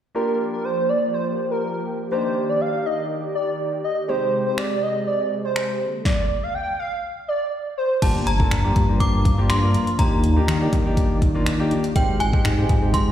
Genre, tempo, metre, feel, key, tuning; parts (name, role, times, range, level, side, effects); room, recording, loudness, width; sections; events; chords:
dance-pop; 122 BPM; 4/4; straight; G minor; A4 = 439 Hz
clear grand piano; accompaniment; 0.1-13.1 s; Ab3 to Bb4; -27 LUFS; left 2 dB; sidechain pumping, slapback echo
airy dreamy lead; melody; 0.2-7.9 s; Bb4 to G5; -23 LUFS; right 1 dB; chorus, sidechain pumping, slapback echo, ping-pong delay
sweeping resonant pad; sustained chords; 0.2-13.1 s; C3 to D5; -29 LUFS; equal; chorus, sidechain pumping
deep house drum kit; drums; 4.6-13.1 s; crash cymbal, finger snaps, hi-hat, kick drum, snare drum; -21 LUFS; equal
synth chime; melody; 8.0-13.1 s; G5 to D6; -26 LUFS; equal; ensemble chorus, slapback echo, ping-pong delay
chorused synth bass; bass; 8.0-13.1 s; G1 to Eb3; -21 LUFS; equal; sidechain pumping
light reverb; live gig heard through the venue's PA, recital hall reverb; -19 LUFS; side -10 dB against mid
0.2-8.0 A section; 8.0-13.1 B section
0.2 Gm7; 2.1 Ebmaj7; 4.1 Abmaj7; 5.8 Bbmaj7; 8.0 Gm7; 10.0 Ebmaj7; 12.0 Abmaj7